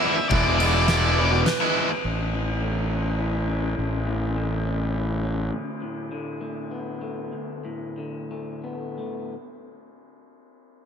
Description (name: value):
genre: post-rock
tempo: 103 BPM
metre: 3/4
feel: uneven beats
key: unclear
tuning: A4 = 441 Hz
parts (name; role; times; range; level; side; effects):
- overdriven electric guitar; melody; 0.0-1.4 s; D5 to E5; -26 LUFS; left 1 dB; slapback echo
- electric guitar through a small old amp; arpeggios; 0.0-2.0 s; B4 to D5; -33 LUFS; right 7 dB; spring reverb, slapback echo
- distorted electric guitar; riff; 0.0-1.9 s; E2 to E4; -26 LUFS; right 15 dB; overdrive
- tight distorted guitar; riff; 0.0-1.9 s; E2 to E4; -26 LUFS; left 14 dB; distortion
- fuzz fingered electric bass; bass; 0.3-5.5 s; E1 to A1; -25 LUFS; equal; overdrive
- oversized low-tuned drum kit; drums; 0.3-1.6 s; kick drum, ride cymbal, snare drum; -29 LUFS; left 1 dB; none
- electric guitar through a small old amp; arpeggios; 2.1-9.3 s; D2 to E4; -32 LUFS; left 1 dB; slapback echo
room: light reverb, small room ambience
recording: none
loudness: -23 LUFS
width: side -7 dB against mid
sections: 0.0-2.0 A section; 2.0-9.3 B section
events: slowing down 5.5-9.3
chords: 0.0 E7; 2.0 A; 5.5 D5